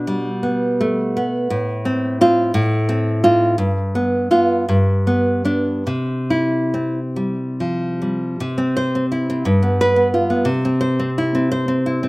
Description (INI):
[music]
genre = romantic piece for solo classical guitar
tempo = 47-60 BPM (dotted quarters)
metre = 6/8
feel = rubato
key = C major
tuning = A4 = 436 Hz
[part]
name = nylon-string guitar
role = solo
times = 0.0-12.1 s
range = G2 to C5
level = -16 LUFS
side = equal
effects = none
[sound]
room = little or no reverb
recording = recorded outdoors, with no room sound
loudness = -16 LUFS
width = side -22 dB against mid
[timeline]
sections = 0.0-8.4 A section; 8.4-12.1 B section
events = none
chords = 0.0 G/B; 1.5 F/A; 3.6 G7; 4.7 G; 5.9 C; 9.5 G7; 10.5 C